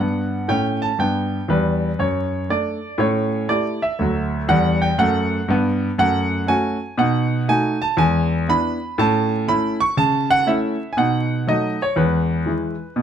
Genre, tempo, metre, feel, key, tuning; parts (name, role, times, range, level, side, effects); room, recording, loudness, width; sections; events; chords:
jazz, stride piano; 120 BPM; 4/4; swing 65% on 8ths; D major, A major from 6.0 s; A4 = 439 Hz
clear concert grand piano; solo; 0.0-13.0 s; D2 to C#6; -17 LUFS; right 1 dB
light reverb; vinyl crackle; -17 LUFS; side -8 dB against mid
0.0-13.0 A section
0.0 Gmaj7; 2.0 D/F#; 3.0 A7; 4.0 D; 6.0 F#m; 7.0 B7; 8.0 E7; 9.0 A; 10.0 A/C#; 11.0 B7; 12.0 E